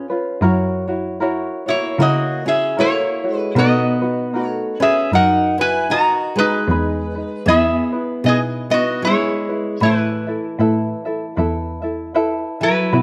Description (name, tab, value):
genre	Hawaiian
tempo	77 BPM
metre	4/4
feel	swing 58% on 8ths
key	B major, E major from 6.7 s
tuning	A4 = 440 Hz
part	lap resonator guitar	melody	0.0-13.0 s	D#4 to A#5	-21 LUFS	equal	none
part	picked steel-string acoustic guitar	second line	0.0-13.0 s	E3 to F#4	-26 LUFS	equal	none
part	tenor ukulele	accompaniment	0.0-13.0 s	C#4 to E5	-25 LUFS	equal	none
part	muted cello	bass	0.4-13.0 s	E2 to C#3	-22 LUFS	equal	none
room	moderate recital hall reverb, RT60 1.4 s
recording	close, detailed microphones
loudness	-18 LUFS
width	mono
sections	0.0-6.7 A section; 6.7-13.0 B section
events	none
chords	0.4 F#7; 3.6 Bmaj7; 6.7 Emaj7; 9.8 Asus2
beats	| 0.42 1.20 1.99 2.77 | 3.55 4.34 5.12 5.90 | 6.68 7.47 8.25 9.03 | 9.81 10.59 11.37 12.15 | 12.94